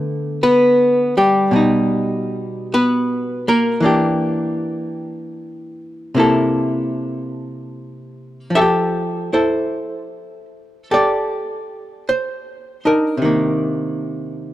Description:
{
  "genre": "jazz ballad",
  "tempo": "52 BPM",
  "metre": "4/4",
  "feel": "swing 66% on 8ths",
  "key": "F major from 8.5 s",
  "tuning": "A4 = 440 Hz",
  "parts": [
    { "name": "archtop guitar, miked and amplified", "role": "solo", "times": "0.0-14.5 s", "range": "B2 to E5", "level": "-16 LUFS", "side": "equal", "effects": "none" }
  ],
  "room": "light reverb",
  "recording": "dark, warm production",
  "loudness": "-15 LUFS",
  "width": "side -14 dB against mid",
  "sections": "0.0-8.5 A section; 8.5-14.5 B section",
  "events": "none",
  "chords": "0.0 D5; 1.5 B; 3.8 Em7b5; 6.2 C6; 8.5 Fmaj9; 13.2 Cm9"
}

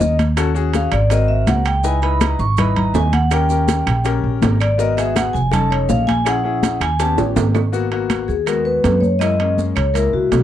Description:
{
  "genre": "Afro-Cuban jazz",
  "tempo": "163 BPM",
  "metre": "4/4",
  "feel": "straight",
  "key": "G# minor",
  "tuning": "A4 = 440 Hz",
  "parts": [
    { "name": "vibraphone with medium hard mallets", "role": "melody", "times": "0.0-10.4 s", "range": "F#4 to C#6", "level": "-20 LUFS", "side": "equal", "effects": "none" },
    { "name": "clear baby grand piano", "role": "accompaniment", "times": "0.0-10.4 s", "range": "G#3 to B4", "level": "-23 LUFS", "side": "left 10 dB", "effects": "none" },
    { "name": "upright bass", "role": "bass", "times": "0.0-10.4 s", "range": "E#1 to F#2", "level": "-18 LUFS", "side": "right 1 dB", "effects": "none" },
    { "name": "bongos", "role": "percussion", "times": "0.0-7.6 s", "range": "none", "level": "-26 LUFS", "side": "left 9 dB", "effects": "none" },
    { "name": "congas", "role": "percussion", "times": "0.0-10.4 s", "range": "none", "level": "-22 LUFS", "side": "left 2 dB", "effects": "none" },
    { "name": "maracas", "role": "percussion", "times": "0.0-10.4 s", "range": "none", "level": "-37 LUFS", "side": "right 17 dB", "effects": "none" },
    { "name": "timbales", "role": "percussion", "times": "0.2-10.4 s", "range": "none", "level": "-25 LUFS", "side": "right 10 dB", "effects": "none" },
    { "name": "claves", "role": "percussion", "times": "0.4-9.9 s", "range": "none", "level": "-33 LUFS", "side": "right 20 dB", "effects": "none" }
  ],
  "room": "little or no reverb",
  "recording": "dry, close 1970s-style studio recording",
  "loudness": "-15 LUFS",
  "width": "side -11 dB against mid",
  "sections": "0.0-7.7 A section; 7.7-10.4 B section",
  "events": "vibraphone solo 0.0-7.7; drum fill 7.2-7.7",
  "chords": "0.4 D#m7b5; 1.1 G#7; 1.8 C#m7; 3.3 D#7; 4.8 G#m9; 5.5 Faug7; 6.3 A#m7b5; 7.0 D#aug7; 7.7 G#m9; 9.2 F#7"
}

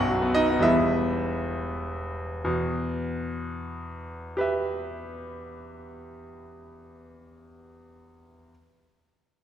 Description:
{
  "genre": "classical, virtuoso piano study",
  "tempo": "62-78 BPM (dotted quarters)",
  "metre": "6/8",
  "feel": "rubato",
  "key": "E minor",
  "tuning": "A4 = 442 Hz",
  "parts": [
    { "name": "clear concert grand piano", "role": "solo", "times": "0.0-8.5 s", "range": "E1 to F#5", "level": "-26 LUFS", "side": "equal", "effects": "none" }
  ],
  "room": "wet concert hall reverb, RT60 1.8 s",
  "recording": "recorded in a church or concert hall",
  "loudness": "-25 LUFS",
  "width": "side -10 dB against mid",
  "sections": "0.0-2.4 A section; 2.4-6.3 B section",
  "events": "slowing down 0.0-2.4",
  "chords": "0.0 B; 0.6 Em"
}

